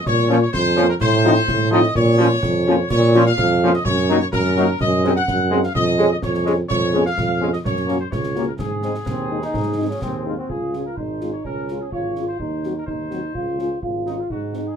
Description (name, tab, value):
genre	military-style march for wind band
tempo	126 BPM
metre	2/4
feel	straight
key	Db major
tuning	A4 = 440 Hz
part	dark trumpet section	melody	0.0-14.8 s	Eb4 to Gb5	-24 LUFS	left 1 dB	none
part	warm tuba	bass	0.1-14.7 s	Ab1 to Bb2	-20 LUFS	right 2 dB	none
part	concert snare drum, concert bass drum and clash cymbals	drums	0.1-14.6 s	none	-29 LUFS	equal	none
part	dark French horn section	accompaniment	0.3-14.6 s	Gb3 to Ab4	-22 LUFS	left 2 dB	none
part	warm trombone section	sustained chords	0.3-10.5 s	F3 to Eb4	-22 LUFS	left 2 dB	none
part	clear euphonium	second line	10.5-14.8 s	Db4 to F4	-26 LUFS	right 1 dB	none
room	light reverb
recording	none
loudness	-17 LUFS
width	side -7 dB against mid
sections	0.0-10.5 A section; 10.5-14.8 B section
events	none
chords	0.0 Bbm; 1.0 F7/A; 2.0 Bbm; 3.9 Ebm/Gb; 4.8 Ab7/Gb; 5.8 Db/F; 6.7 Db7/F; 7.6 Gb; 8.6 Ab; 10.5 Db; 12.4 Cdim/Eb; 13.3 Db